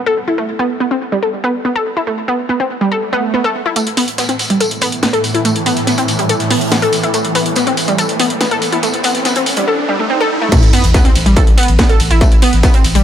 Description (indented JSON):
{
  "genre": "driving peak-time techno",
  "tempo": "142 BPM",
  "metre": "4/4",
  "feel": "straight",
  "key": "A minor",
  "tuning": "A4 = 440 Hz",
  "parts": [
    { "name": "downlifter, swell, riser and sub drop", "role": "sound effects", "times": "0.0-0.4, 3.1-12.2 s", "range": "none", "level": "-22 LUFS", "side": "right 1 dB", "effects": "none" },
    { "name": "analog pluck", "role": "riff", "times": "0.1-13.0 s", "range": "G3 to A4", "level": "-15 LUFS", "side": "equal", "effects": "chorus, overdrive, sidechain pumping, digital delay" },
    { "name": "swarming drone", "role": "drone", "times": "4.2-9.7 s", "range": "A2 to E3", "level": "-20 LUFS", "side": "right 1 dB", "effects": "built-in reverb, sidechain pumping" },
    { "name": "oversized low-tuned drum kit", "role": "drums", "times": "3.8-13.0 s", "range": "hi-hat, snare drum, tambourine", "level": "-24 LUFS", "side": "equal", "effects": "sidechain pumping on hats, high-pass filter on hats, high-pass filter on snare, sidechain pumping on perc, high-pass filter on perc, high-pass filter on room" },
    { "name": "techno drum kit", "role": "drums", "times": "3.8-13.0 s", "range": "crash cymbal, hi-hat, ride cymbal, snare drum", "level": "-19 LUFS", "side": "equal", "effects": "sidechain pumping on hats, sidechain pumping on cymbals" },
    { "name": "electronic kick drum", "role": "drums", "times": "10.5-12.7 s", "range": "none", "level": "-11 LUFS", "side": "equal", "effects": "distortion" },
    { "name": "saturated sub bass", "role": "bass", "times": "10.6-13.0 s", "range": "A1", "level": "-13 LUFS", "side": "equal", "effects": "tube saturation, sidechain pumping, low-pass filter" }
  ],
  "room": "light reverb, digital ambience",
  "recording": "high-pass filter",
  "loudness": "-11 LUFS",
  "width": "side -9 dB against mid",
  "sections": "0.0-3.8 A section; 3.8-10.5 B section; 10.5-13.0 C section",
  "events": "filter sweep on synth arpeggio sound 0.0-3.8, 3.8-10.5; swell 3.1-3.8; build-up 3.8-10.5; riser 3.8-10.5; drop 10.5-13.0; impact 10.5-12.2",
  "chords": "0.0 A5"
}